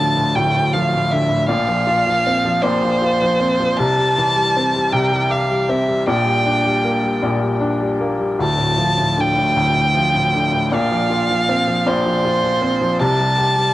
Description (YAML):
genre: pop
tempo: 52 BPM (dotted quarters)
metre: 6/8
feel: straight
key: unclear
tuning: A4 = 439 Hz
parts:
  - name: warm violin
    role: melody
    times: 0.0-13.7 s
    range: C5 to A5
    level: -18 LUFS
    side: right 1 dB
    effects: cassette tape, tape echo
  - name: clear baby grand piano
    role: accompaniment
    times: 0.0-13.7 s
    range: D1 to G4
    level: -18 LUFS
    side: left 1 dB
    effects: cassette tape
room: light reverb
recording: home recording on cassette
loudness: -15 LUFS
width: side -15 dB against mid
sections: 0.0-13.7 A section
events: none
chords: 0.0 Dm; 1.5 Bbsus2; 3.8 C; 6.1 Gm/Bb; 8.4 Dm; 10.7 Bbsus2; 13.0 C5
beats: 0.35 | 1.50 2.64 | 3.78 4.92 | 6.07 7.22 | 8.39 9.55 | 10.70 11.84 | 12.99